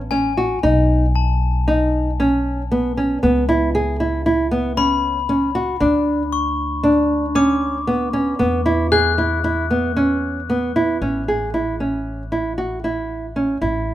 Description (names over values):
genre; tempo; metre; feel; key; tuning
contemporary instrumental, chamber music in an uneven meter; 116 BPM; 5/4; straight; A major; A4 = 439 Hz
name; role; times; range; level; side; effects
upright bass; bass; 0.0-13.9 s; A1 to E2; -24 LUFS; equal; none
nylon-string guitar; arpeggios; 0.1-13.9 s; B3 to G#4; -18 LUFS; right 1 dB; none
glockenspiel with hard plastic mallets; texture; 0.1-10.4 s; G#5 to F#6; -24 LUFS; left 8 dB; none
room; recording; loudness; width
light reverb; close, detailed microphones; -16 LUFS; side -13 dB against mid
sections
0.0-11.0 A section; 11.0-13.9 B section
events
none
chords
0.0 Amaj7; 0.6 B; 3.2 C#m7; 5.8 Bmadd9/D; 8.4 Esus2; 11.0 A